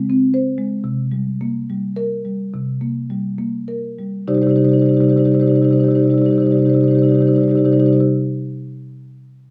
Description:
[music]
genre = classical, contemporary piece for solo marimba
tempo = 70 BPM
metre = 4/4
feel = rubato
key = C minor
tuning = A4 = 440 Hz
[part]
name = marimba with soft mallets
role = solo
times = 0.0-8.0 s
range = C3 to D5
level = -17 LUFS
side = equal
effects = none
[sound]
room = light reverb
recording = none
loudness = -17 LUFS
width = mono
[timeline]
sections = 0.0-4.3 A section; 4.3-7.7 B section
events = slowing down 0.0-4.3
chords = 0.0 Db5; 0.9 C5; 4.3 Cmadd9

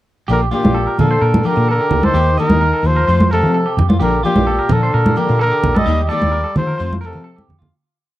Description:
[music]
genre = highlife guitar band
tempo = 129 BPM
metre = 4/4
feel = straight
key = Bb major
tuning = A4 = 442 Hz
[part]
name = breathy trumpet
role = melody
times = 0.3-7.5 s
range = G4 to Eb5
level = -18 LUFS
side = equal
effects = none
[part]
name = brilliant trombone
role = second line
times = 0.3-7.5 s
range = Bb2 to G3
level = -24 LUFS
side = left 4 dB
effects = none
[part]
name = picked steel-string acoustic guitar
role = accompaniment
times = 0.3-7.3 s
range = Eb3 to G4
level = -23 LUFS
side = left 5 dB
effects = none
[part]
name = clean electric guitar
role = arpeggios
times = 0.3-7.7 s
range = F4 to Eb5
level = -23 LUFS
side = right 4 dB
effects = tape echo
[part]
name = hollow-body short-scale fingered electric bass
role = bass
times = 0.3-7.7 s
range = Bb1 to F3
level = -17 LUFS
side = equal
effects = none
[part]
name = congas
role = percussion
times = 0.6-7.7 s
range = none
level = -17 LUFS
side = right 1 dB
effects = none
[sound]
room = light reverb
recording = dry, close 1970s-style studio recording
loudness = -12 LUFS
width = side -15 dB against mid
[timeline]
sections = 0.3-7.7 A section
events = fade-out 5.9-7.7; drum fill 7.4-7.7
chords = 0.3 Bb; 2.1 Eb; 3.1 F; 4.0 Bb; 5.9 Eb; 6.8 F

